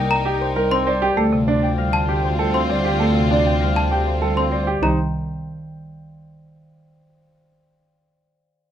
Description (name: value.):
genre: classical, minimalist pattern music.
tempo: 197 BPM.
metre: 6/4.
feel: straight.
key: C dorian.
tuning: A4 = 440 Hz.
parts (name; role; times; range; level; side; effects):
Celtic harp; melody; 0.0-6.7 s; C5 to G5; -25 LUFS; left 3 dB; none.
marimba with medium mallets; accompaniment; 0.0-5.0 s; C3 to A3; -24 LUFS; equal; none.
warm studio violin section; sustained chords; 0.0-4.6 s; C4 to Bb4; -27 LUFS; left 4 dB; none.
rich studio double bass section; bass; 0.0-5.0 s; C2 to D2; -23 LUFS; right 1 dB; none.
trough xylophone with plastic mallets; arpeggios; 0.1-5.0 s; A5 to C6; -24 LUFS; left 4 dB; none.
clear baby grand piano; arpeggios; 0.3-5.0 s; C4 to C5; -23 LUFS; right 4 dB; none.
room: little or no reverb.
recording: close, detailed microphones.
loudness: -17 LUFS.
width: side -10 dB against mid.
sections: 0.0-4.8 A section; 4.8-6.7 B section.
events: none.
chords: 0.0 Cm7; 1.2 Dm7; 4.8 Cm7.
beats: 0.26 0.56 0.87 | 1.17 1.48 1.78 2.08 2.39 2.69 | 3.00 3.30 3.61 3.91 4.22 4.52 | 4.83 5.13 5.43 5.74 6.04 6.35.